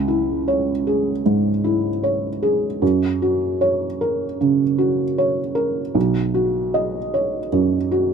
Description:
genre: neoclassical minimalist piano.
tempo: 76 BPM.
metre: 4/4.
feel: rubato.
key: C# dorian.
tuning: A4 = 440 Hz.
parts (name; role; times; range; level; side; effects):
felt-muted upright piano; solo; 0.0-8.1 s; B1 to D#5; -18 LUFS; right 1 dB; none.
room: light reverb.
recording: close, detailed microphones.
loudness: -18 LUFS.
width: side -6 dB against mid.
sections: 0.0-8.1 A section.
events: none.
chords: 0.0 C#m; 2.8 F#; 6.0 Badd9.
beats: 0.47 1.26 2.04 | 2.82 3.61 4.40 5.17 | 5.95 6.74 7.53.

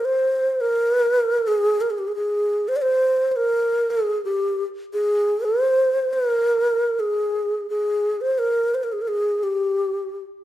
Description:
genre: arabic.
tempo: 86 BPM.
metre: 4/4.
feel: straight.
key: unclear.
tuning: A4 = 440 Hz.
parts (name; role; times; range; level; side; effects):
breathy mellow low ney; solo; 0.0-10.2 s; G4 to D5; -19 LUFS; equal; none.
room: moderate recital hall reverb, RT60 1.6 s.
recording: none.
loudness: -19 LUFS.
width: side -13 dB against mid.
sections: 0.1-10.4 A section.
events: none.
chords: none.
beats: | 0.09 0.78 1.48 2.17 | 2.86 3.56 4.25 4.94 | 5.64 6.33 7.02 7.72 | 8.41 9.10 9.80.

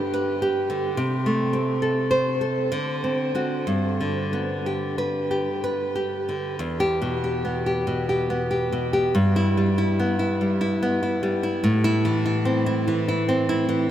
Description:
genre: romantic piece for solo classical guitar.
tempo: 60-76 BPM.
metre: 3/4.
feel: rubato.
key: G major, E minor from 6.6 s.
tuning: A4 = 438 Hz.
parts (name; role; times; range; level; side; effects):
nylon-string guitar; solo; 0.0-13.9 s; E2 to C5; -21 LUFS; equal; none.
room: wet huge ambient reverb, RT60 8.1 s.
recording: in a vast, echoing space.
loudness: -21 LUFS.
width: side -11 dB against mid.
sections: 0.0-6.6 A section; 6.6-13.9 B section.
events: none.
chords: 0.0 G; 1.0 Am/C; 2.7 D7; 3.7 G; 6.6 Em; 9.1 Em/G; 11.6 Am.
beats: 0.13 | 0.98 1.83 2.73 | 3.69 4.67 5.64 | 6.60 7.46 8.30 | 9.14 9.98 10.80 | 11.63 12.46 13.28.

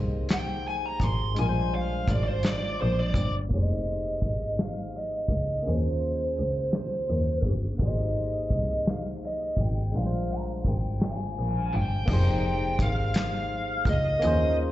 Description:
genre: slow six-eight R&B.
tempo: 56 BPM (dotted quarters).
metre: 6/8.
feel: straight.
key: F minor.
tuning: A4 = 441 Hz.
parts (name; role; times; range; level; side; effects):
barky tine electric piano; accompaniment; 0.0-14.7 s; G3 to C5; -34 LUFS; left 2 dB; analog chorus.
bright double bass; bass; 0.0-14.7 s; F1 to Eb2; -28 LUFS; equal; none.
bluesy overdriven lead guitar; melody; 0.3-14.6 s; C5 to C6; -30 LUFS; equal; distortion, slapback echo.
warm soul drum kit; drums; 0.3-14.4 s; crash cymbal, hi-hat, kick drum, snare drum; -28 LUFS; equal; none.
room: studio reverb.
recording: live gig heard through the venue's PA, recital hall reverb, low-pass filter, nothing above 7.9 kHz.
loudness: -24 LUFS.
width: side -14 dB against mid.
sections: 0.0-3.5 A section; 3.5-12.1 B section; 12.1-14.7 C section.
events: lead electric guitar solo 0.0-3.5; filter sweep 3.5-12.1; kick muted 11.0-12.1.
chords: 0.0 Abmaj9; 1.4 Bb13; 3.5 Fm11; 5.7 Eb13sus4; 7.8 Abmaj9; 9.9 Bb13; 12.1 Fm11.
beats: 0.29 | 1.37 2.44 | 3.51 4.58 | 5.65 6.72 | 7.79 8.87 | 9.94 11.01 | 12.08 13.15 | 14.22.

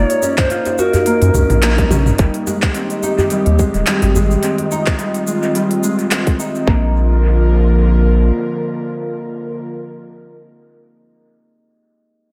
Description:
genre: organic downtempo.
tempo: 107 BPM.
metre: 4/4.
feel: swing 56% on 16ths.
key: unclear.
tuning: A4 = 440 Hz.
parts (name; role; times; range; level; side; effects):
breathy ney; melody; 0.0-1.9 s; Bb4 to Db5; -21 LUFS; equal; tape echo.
Celtic harp; arpeggios; 0.0-9.9 s; G3 to Gb4; -23 LUFS; equal; low-pass filter, tape echo.
round analog bass; bass; 0.0-8.3 s; Eb1 to Gb2; -15 LUFS; equal; sidechain pumping.
wind-like tuned noise texture; texture; 0.0-6.7 s; Eb4 to Eb5; -31 LUFS; equal; built-in reverb.
organic electronic drum kit; drums; 0.1-6.6 s; handclaps, hi-hat, shaker, toms; -24 LUFS; equal; overdrive, dub echo.
djembe; percussion; 0.2-4.4 s; none; -25 LUFS; equal; dub echo.
electronic kick drum; drums; 0.4-6.8 s; none; -18 LUFS; equal; overdrive.
airy breathy pad; sustained chords; 2.2-9.7 s; D3 to Bb4; -23 LUFS; equal; chorus, sidechain pumping.
room: moderate echo chamber reverb, RT60 1.7 s, digital ambience.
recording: echo-heavy mix.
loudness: -15 LUFS.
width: mono.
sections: 0.0-2.2 A section; 2.2-6.7 B section; 6.7-8.9 C section.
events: band accent 1.6; drum fill 1.8-2.2; filter sweep on harp 2.2-6.7.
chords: 0.0 Gbmaj7; 2.2 Abmaj7; 6.7 Bb.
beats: 0.50 1.06 1.62 | 2.19 2.75 3.31 3.87 | 4.43 4.99 5.55 6.11 | 6.67 7.23 7.79 8.35.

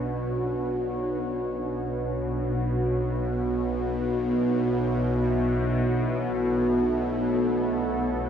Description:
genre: dark ambient drone.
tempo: free time.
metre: none.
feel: none.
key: unclear.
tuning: A4 = 435 Hz.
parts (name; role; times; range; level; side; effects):
deep dark ambient pad; sustained chords; 0.0-8.3 s; B3 to C#5; -28 LUFS; right 1 dB; chorus, built-in reverb.
bowed-like drone; drone; 0.0-8.3 s; B1 to B2; -26 LUFS; equal; built-in reverb, phaser.
room: wet plate reverb, RT60 2.8 s.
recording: none.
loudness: -24 LUFS.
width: side -8 dB against mid.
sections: 0.0-8.3 A section.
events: none.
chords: 0.0 Bm; 1.8 A/B.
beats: free time.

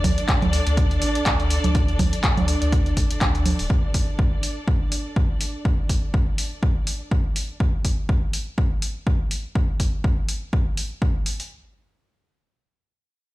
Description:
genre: acid house.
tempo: 123 BPM.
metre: 4/4.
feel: swing 56% on 16ths.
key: unclear.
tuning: A4 = 442 Hz.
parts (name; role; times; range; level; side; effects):
round analog bass; bass; 0.0-3.7 s; D1 to D2; -23 LUFS; equal; sidechain pumping.
booming analog drum machine; drums; 0.0-11.5 s; congas, handclaps, hi-hat; -26 LUFS; right 1 dB; none.
electronic kick drum; drums; 0.0-11.1 s; none; -21 LUFS; equal; none.
warm symphonic string section; texture; 0.0-7.6 s; D4 to D5; -30 LUFS; right 1 dB; sidechain pumping.
room: little or no reverb.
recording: played on a big sound system in a bare room, large studio reverb.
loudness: -20 LUFS.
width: side -18 dB against mid.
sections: 0.0-11.5 A section.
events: fade-out on string section 0.0-7.6.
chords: 0.0 D5.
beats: 0.28 0.77 1.26 | 1.75 2.24 2.72 3.21 | 3.70 4.19 4.67 5.16 | 5.65 6.14 6.63 7.11 | 7.60 8.09 8.58 9.06 | 9.55 10.04 10.53 11.02.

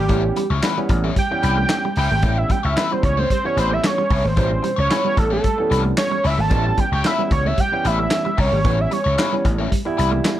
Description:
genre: funk.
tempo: 112 BPM.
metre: 4/4.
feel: straight.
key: A mixolydian.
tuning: A4 = 441 Hz.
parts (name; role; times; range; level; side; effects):
fat analog lead; melody; 0.0-9.5 s; G4 to A5; -21 LUFS; right 2 dB; slapback echo.
crunchy overdriven guitar; accompaniment; 0.0-10.2 s; G3 to C#5; -27 LUFS; left 7 dB; wah.
mellow electric guitar; riff; 0.0-10.2 s; G3 to A3; -28 LUFS; right 2 dB; none.
vintage slap bass; bass; 0.0-10.2 s; G#1 to C#2; -21 LUFS; equal; none.
barky tine electric piano; stabs; 0.1-10.4 s; B2 to E4; -26 LUFS; right 2 dB; overdrive.
vintage drum kit; drums; 0.1-10.4 s; handclaps, hi-hat, kick drum, snare drum; -22 LUFS; equal; none.
room: light reverb.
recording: none.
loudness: -16 LUFS.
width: side -12 dB against mid.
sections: 0.0-10.4 A section.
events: analog synth lead solo 0.0-10.4.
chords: 0.0 A9.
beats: | 0.09 0.63 1.16 1.70 | 2.23 2.77 3.30 3.84 | 4.37 4.91 5.44 5.98 | 6.51 7.05 7.58 8.12 | 8.65 9.19 9.72 10.26.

